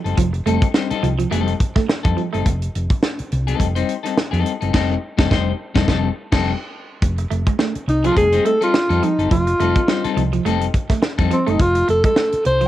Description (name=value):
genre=funk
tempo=105 BPM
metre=4/4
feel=swing 56% on 16ths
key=F mixolydian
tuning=A4 = 440 Hz
part: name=clean electric guitar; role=accompaniment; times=0.0-11.6 s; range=G3 to C5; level=-23 LUFS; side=left 9 dB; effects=harmonic tremolo, cassette tape
part: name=hollow-body short-scale fingered electric bass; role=bass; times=0.0-12.7 s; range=F1 to F2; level=-21 LUFS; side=equal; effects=none
part: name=tight funk drum kit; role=drums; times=0.1-12.7 s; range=crash cymbal, hi-hat, kick drum, snare drum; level=-20 LUFS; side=equal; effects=cassette tape
part: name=electric guitar at the edge of break-up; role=riff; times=0.2-2.4, 7.2-12.7 s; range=F3 to A3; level=-24 LUFS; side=right 8 dB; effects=analog chorus, cassette tape
part: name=breathy alto saxophone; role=melody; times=7.9-12.7 s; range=C4 to C5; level=-17 LUFS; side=equal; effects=cassette tape
room=light reverb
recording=home recording on cassette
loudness=-16 LUFS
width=side -13 dB against mid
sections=0.0-7.0 A section; 7.0-12.7 B section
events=band accent 4.7-7.0; alto saxophone solo 7.0-12.7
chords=0.0 F9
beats=| 0.17 0.74 1.31 1.88 | 2.46 3.03 3.60 4.17 | 4.74 5.31 5.88 6.45 | 7.03 7.60 8.17 8.74 | 9.31 9.88 10.45 11.03 | 11.60 12.17